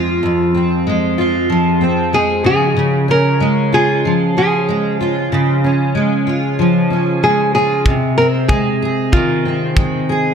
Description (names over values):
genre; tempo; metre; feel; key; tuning
acoustic pop; 94 BPM; 4/4; swing 60% on 16ths; unclear; A4 = 439 Hz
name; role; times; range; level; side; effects
fingerpicked steel-string acoustic guitar; accompaniment; 0.0-10.3 s; F2 to Ab4; -14 LUFS; equal; double-tracked left and right, slapback echo
nylon-string guitar; melody; 2.1-10.0 s; F4 to Bb4; -16 LUFS; equal; none
kick drum; drums; 7.9-9.9 s; none; -17 LUFS; equal; none
room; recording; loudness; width
moderate lush hall reverb, RT60 1.8 s, small room ambience; big arena sound; -13 LUFS; side -7 dB against mid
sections
0.0-10.3 A section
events
none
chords
0.0 Fm; 2.4 Db; 7.9 Ab/C